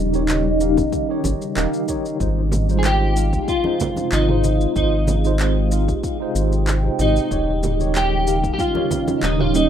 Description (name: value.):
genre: sunset chillout.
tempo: 94 BPM.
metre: 4/4.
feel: straight.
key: Ab major.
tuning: A4 = 438 Hz.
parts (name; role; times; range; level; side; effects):
shimmering ambient pad; sustained chords; 0.0-9.7 s; C3 to G4; -23 LUFS; equal; chorus, built-in reverb, phaser, vintage 12-bit sampler grit.
round analog bass; bass; 0.0-9.7 s; Eb1 to Ab1; -20 LUFS; equal; tube saturation.
bright tine electric piano; accompaniment; 0.1-9.7 s; Eb3 to F5; -26 LUFS; moving between left 4 dB and right 5 dB; medium stereo tremolo, auto-pan, ping-pong delay.
deep house drum kit; drums; 0.1-9.7 s; handclaps, shaker, toms; -28 LUFS; equal; overdrive.
electronic kick drum; drums; 0.8-9.0 s; none; -28 LUFS; equal; overdrive.
congas; percussion; 0.8-9.7 s; none; -27 LUFS; right 3 dB; none.
clean electric guitar; melody; 2.8-9.7 s; Eb4 to Ab4; -22 LUFS; equal; ensemble chorus, digital delay.
room: light reverb.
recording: rough home demo mix.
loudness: -17 LUFS.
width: side -9 dB against mid.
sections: 0.0-9.7 A section.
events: none.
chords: 0.0 Eb7; 2.2 Ab6; 7.3 Eb7.